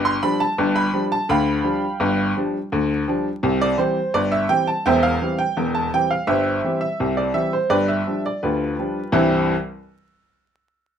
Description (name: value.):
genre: ragtime piano.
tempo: 84 BPM.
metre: 2/4.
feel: straight.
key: C major.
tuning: A4 = 440 Hz.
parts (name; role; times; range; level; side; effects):
clear upright piano; solo; 0.0-9.5 s; E1 to C6; -18 LUFS; equal; none.
room: moderate small room reverb, RT60 0.5 s.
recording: vinyl crackle.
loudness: -18 LUFS.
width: side -8 dB against mid.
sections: 0.0-9.1 A section; 9.1-10.6 B section.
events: none.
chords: 0.0 G5; 3.4 C; 4.8 C/E; 6.3 C/G; 7.7 G7; 9.1 C.